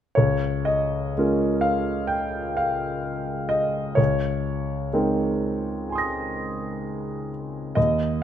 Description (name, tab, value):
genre	classical, impressionist solo piano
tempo	64 BPM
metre	4/4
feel	rubato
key	Db major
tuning	A4 = 439 Hz
part	clear concert grand piano	solo	0.2-8.2 s	Db2 to Bb6	-22 LUFS	equal	none
room	light reverb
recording	close, detailed microphones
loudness	-22 LUFS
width	side -10 dB against mid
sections	0.2-8.2 A section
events	none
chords	0.2 Db6; 4.0 Bbm11/Db